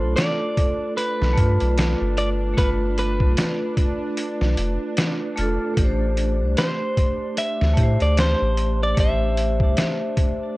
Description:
trip hop; 75 BPM; 4/4; swing 57% on 16ths; A4 = 441 Hz
clean electric guitar; melody; 0.0-10.6 s; B4 to E5; -26 LUFS; equal; tape echo
vibraphone with medium hard mallets; accompaniment; 0.0-10.6 s; A3 to C5; -26 LUFS; equal; harmonic tremolo, tape echo
soft dub sub bass; bass; 0.0-9.8 s; F1 to A2; -21 LUFS; equal; transformer saturation
bowed-like drone; texture; 0.0-10.6 s; D4; -34 LUFS; right 3 dB; built-in reverb
trip hop sampler-style drum kit; drums; 0.2-10.4 s; hi-hat, kick drum, snare drum; -22 LUFS; equal; overdrive, studio reverb
little or no reverb; worn, warbling old tape, cassette tape, warbly pitch drift; -19 LUFS; side -20 dB against mid
0.0-10.6 A section
0.0 G9; 5.8 Am7

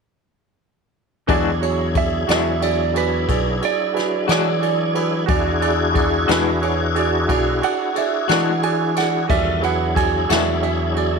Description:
slow blues; 60 BPM (dotted quarters); 12/8; straight; E mixolydian; A4 = 442 Hz
clear upright piano; accompaniment; 1.3-11.2 s; F#4 to E5; -24 LUFS; right 13 dB
electric guitar through a small old amp; accompaniment; 1.3-10.5 s; E3 to F#4; -22 LUFS; left 16 dB; tremolo
tonewheel organ; sustained chords; 1.3-11.2 s; D#3 to A4; -23 LUFS; left 2 dB; slow rotary speaker, overdrive, chorus vibrato
modern bright fingered electric bass; bass; 1.3-11.2 s; B1 to E3; -23 LUFS; left 2 dB
jazz brush drum kit; drums; 1.3-11.1 s; kick drum, ride cymbal, snare drum; -24 LUFS; left 3 dB
clean lap steel guitar; second line; 2.0-11.2 s; B4 to G#5; -23 LUFS; right 13 dB
light reverb, studio reverb; 1960s-style stereo with parts hard left and right; -17 LUFS; side -5 dB against mid
1.3-11.2 A section
electric slide guitar solo 1.3-11.2
1.3 E9

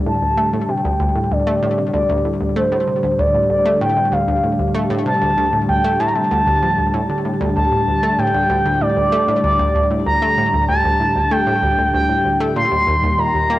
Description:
ambient, sequencer-driven space music; 96 BPM; 4/4; straight; A4 = 439 Hz
sweeping resonant pad; sustained chords; 0.0-13.6 s; A2 to G4; -21 LUFS; equal; chorus, cassette tape
expressive synth lead; melody; 0.1-13.6 s; C5 to C6; -17 LUFS; equal; chorus, cassette tape, ping-pong delay
analog pluck; riff; 0.1-13.6 s; D2 to Bb3; -21 LUFS; equal; chorus, cassette tape, ping-pong delay
wet spring reverb, RT60 1.3 s, digital ambience; home recording on cassette; -15 LUFS; side -15 dB against mid
0.0-13.6 A section
0.0 Dsus4; 12.6 Eb

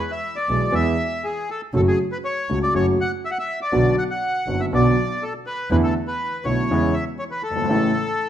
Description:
tango; 121 BPM; 4/4; rubato; A4 = 440 Hz
bandoneon; melody; 0.0-8.3 s; G#4 to F#5; -24 LUFS; left 1 dB
warm grand piano; accompaniment; 0.5-7.9 s; F#1 to G#4; -22 LUFS; equal
clear double bass; bass; 0.5-6.9 s; F#1 to E2; -23 LUFS; right 2 dB
moderate large studio reverb, RT60 1.3 s; minimal, uncompressed stereo recording; -19 LUFS; side -10 dB against mid
0.0-8.3 A section
0.0 E; 1.7 F#m; 3.7 Bm; 5.7 E7sus4; 6.7 E6; 7.7 A

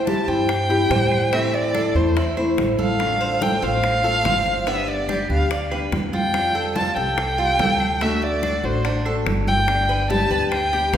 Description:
latin, Cuban son and guajira; 144 BPM; 4/4; straight; A4 = 442 Hz
warm violin; melody; 0.0-11.0 s; C5 to A5; -22 LUFS; equal
nylon-string guitar; accompaniment; 0.0-11.0 s; C3 to G4; -26 LUFS; left 3 dB
Cuban tres; arpeggios; 0.0-11.0 s; A3 to C5; -26 LUFS; right 1 dB
bongos; percussion; 0.1-11.0 s; -31 LUFS; left 3 dB
congas; percussion; 0.1-11.0 s; -29 LUFS; right 2 dB
upright bass; bass; 0.3-11.0 s; G1 to A2; -26 LUFS; equal
claves; percussion; 0.5-10.7 s; -38 LUFS; right 1 dB
wet recital hall reverb, RT60 1.6 s; recorded in a church or concert hall; -18 LUFS; side -9 dB against mid
0.0-11.0 A section
0.0 C; 1.3 Am; 3.0 Dm7/A; 4.7 G; 6.3 Fadd9; 8.0 D; 9.7 G

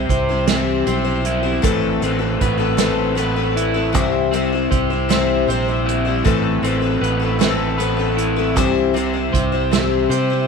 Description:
folk rock and heartland rock; 52 BPM (dotted quarters); 6/8; straight; A4 = 440 Hz
picked twelve-string acoustic guitar; accompaniment; 0.0-10.5 s; A2 to C5; -20 LUFS; left 9 dB
crunchy overdriven guitar; riff; 0.0-10.5 s; A2 to C5; -21 LUFS; right 1 dB
fingered electric bass; bass; 0.0-10.5 s; A1 to C3; -23 LUFS; right 2 dB
unplugged drum kit; drums; 0.1-10.3 s; hi-hat, kick drum, snare drum; -22 LUFS; right 6 dB
light reverb, small room ambience; 1960s-style stereo with parts hard left and right; -16 LUFS; side -5 dB against mid
0.0-10.5 A section
0.0 C; 1.6 Amadd9; 3.9 C; 6.3 Amadd9; 8.6 C

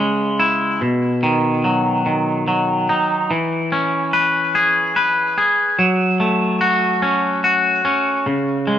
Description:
rock; 48 BPM (dotted quarters); 6/8; straight; E major; A4 = 439 Hz
twangy electric guitar; solo; 0.0-8.8 s; B2 to B4; -15 LUFS; equal; tape echo
wet studio reverb, RT60 0.5 s; band playing live in one room; -15 LUFS; side -10 dB against mid
0.0-3.3 A section; 3.3-8.8 B section
build-up 0.0-3.3
0.0 C#m; 0.8 B; 3.3 E6; 5.8 F#m; 8.3 C#5

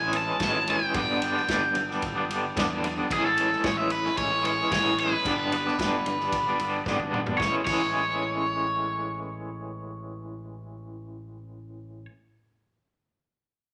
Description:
indie rock; 112 BPM; 4/4; straight; A4 = 440 Hz
overdriven electric guitar; melody; 0.0-12.1 s; G#4 to A5; -29 LUFS; equal; phaser
twangy electric guitar; riff; 0.0-12.1 s; G2 to E4; -31 LUFS; equal; tremolo
modern bright picked electric bass; bass; 0.0-12.1 s; G1 to E2; -42 LUFS; equal
vintage drum kit; drums; 0.1-7.8 s; crash cymbal, kick drum, ride cymbal, snare drum, toms; -36 LUFS; equal
moderate large studio reverb, RT60 1.4 s; -26 LUFS; mono
0.0-7.4 A section; 7.4-11.7 B section
drum fill 6.9-7.4
0.0 Amaj7; 0.9 G; 3.1 Amaj7; 5.2 G; 7.4 Amaj7

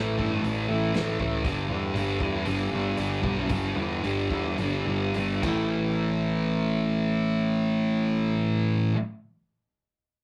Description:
rock, shoegaze and dream pop; 101-119 BPM; 4/4; straight; A4 = 440 Hz
thick fuzz guitar; riff; 0.0-9.0 s; G2 to A3; -27 LUFS; equal; distortion
growling picked electric bass; bass; 0.0-8.4 s; G1 to G2; -35 LUFS; equal; overdrive
loose indie drum kit; drums; 0.2-5.6 s; crash cymbal, hi-hat, kick drum, snare drum; -37 LUFS; equal
wet small room ambience, RT60 0.5 s; rough rehearsal-room recording, tube saturation; -27 LUFS; mono
0.0-5.7 A section; 5.7-10.2 B section
slowing down 1.4-5.7
0.0 A7; 1.4 G5; 5.4 A5

